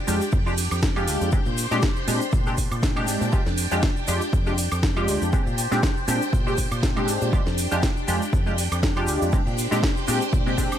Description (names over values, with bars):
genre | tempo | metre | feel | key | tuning
filtered disco house | 120 BPM | 4/4 | swing 55% on 16ths | F dorian | A4 = 440 Hz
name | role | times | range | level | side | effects
phased string machine | sustained chords | 0.0-10.8 s | D4 to G5 | -30 LUFS | equal | ensemble chorus, phaser, sidechain pumping
funky polysynth comp | accompaniment | 0.1-10.8 s | Ab3 to G4 | -26 LUFS | equal | chorus, phaser, sidechain pumping
fingered electric bass | bass | 0.1-10.7 s | D2 to Bb2 | -27 LUFS | equal | sidechain pumping
house drum kit | drums | 0.1-10.8 s | hi-hat, shaker, snare drum, woodblock | -29 LUFS | right 1 dB | sidechain pumping on cymbals, studio reverb, sidechain pumping on perc, sidechain pumping on hats
tube shaker | percussion | 0.1-10.8 s | none | -38 LUFS | left 5 dB | sidechain pumping on perc
electronic kick drum | drums | 0.3-10.7 s | none | -23 LUFS | equal | studio reverb
room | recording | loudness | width
little or no reverb | none | -20 LUFS | side -10 dB against mid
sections
0.0-10.8 A section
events
none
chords
0.0 Fm69; 1.3 Bb13; 3.3 Fm69; 5.3 Bb13; 7.3 Fm69; 9.3 Bb13